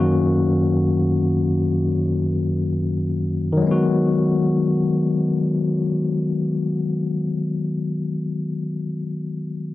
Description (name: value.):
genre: R&B.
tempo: free time.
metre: none.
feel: none.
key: G# minor.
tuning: A4 = 439 Hz.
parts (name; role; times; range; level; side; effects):
tine electric piano; solo; 0.0-9.7 s; F#2 to F#4; -19 LUFS; left 2 dB; medium stereo tremolo.
room: little or no reverb.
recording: home recording on cassette.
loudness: -19 LUFS.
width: side -16 dB against mid.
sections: 0.0-3.6 A section; 3.6-7.3 B section.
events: none.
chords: 0.0 D#m7/F#; 3.6 G#m7.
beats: free time.